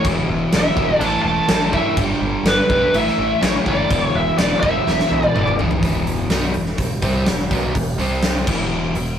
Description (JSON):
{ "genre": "hard rock", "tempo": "125 BPM", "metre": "4/4", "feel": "straight", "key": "E minor", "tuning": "A4 = 440 Hz", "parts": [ { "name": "bluesy overdriven lead guitar", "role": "melody", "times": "0.0-5.5 s", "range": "B4 to A5", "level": "-19 LUFS", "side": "equal", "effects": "distortion" }, { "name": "overdriven semi-hollow guitar", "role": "riff", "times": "0.0-9.2 s", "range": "E2 to C4", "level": "-21 LUFS", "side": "left 1 dB", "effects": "none" }, { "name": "huge arena drum kit", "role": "drums", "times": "0.0-9.1 s", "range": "crash cymbal, hi-hat, kick drum, snare drum, toms", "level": "-20 LUFS", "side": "equal", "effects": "none" }, { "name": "modern bright picked electric bass", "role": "bass", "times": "0.1-9.2 s", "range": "E1 to C2", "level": "-26 LUFS", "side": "equal", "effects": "none" } ], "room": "moderate small room reverb, RT60 0.5 s", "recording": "rough rehearsal-room recording, warm saturation", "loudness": "-16 LUFS", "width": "side -9 dB against mid", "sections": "0.0-5.8 A section; 5.8-9.2 B section", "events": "drum fill 4.9-5.8", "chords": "0.1 E5; 1.0 A5; 2.0 G; 2.9 A5; 3.9 E5; 8.0 C5; 8.5 E5", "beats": "| 0.05 0.53 1.01 1.49 | 1.98 2.46 2.94 3.42 | 3.90 4.38 4.86 5.34 | 5.82 6.31 6.79 7.27 | 7.75 8.23 8.71" }